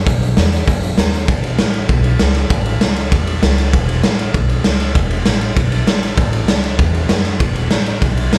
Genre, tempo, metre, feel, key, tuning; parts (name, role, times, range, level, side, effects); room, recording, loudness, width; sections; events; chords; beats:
rockabilly; 196 BPM; 4/4; straight; A4 = 440 Hz
upright bass; bass; 0.0-8.4 s; E1 to F#2; -20 LUFS; equal
raw garage drum kit; drums; 0.1-8.4 s; hi-hat, kick drum, ride cymbal, snare drum; -17 LUFS; equal
moderate club reverb, RT60 0.8 s; live gig heard through the venue's PA, club ambience; -15 LUFS; mono
0.0-1.3 A section; 1.3-8.4 A section
| 0.06 0.37 0.68 0.98 | 1.29 1.59 1.90 2.20 | 2.51 2.81 3.12 3.42 | 3.73 4.04 4.34 4.65 | 4.95 5.26 5.57 5.87 | 6.18 6.48 6.79 7.10 | 7.40 7.71 8.02 8.32